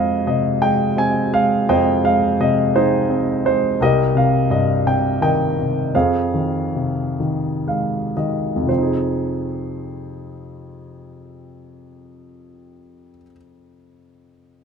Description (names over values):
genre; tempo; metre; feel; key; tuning
classical, lyrical solo piano; 37-57 BPM (dotted quarters); 6/8; rubato; F minor; A4 = 440 Hz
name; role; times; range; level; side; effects
warm baby grand piano; solo; 0.0-14.6 s; C2 to Ab5; -17 LUFS; equal; none
room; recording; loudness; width
light reverb; close, detailed microphones; -16 LUFS; side -6 dB against mid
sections
0.0-8.7 A section; 8.7-14.6 B section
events
slowing down 3.8-8.7; grand piano fill 7.2-8.7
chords
0.0 Fm7; 3.8 Cm7; 5.9 Fm7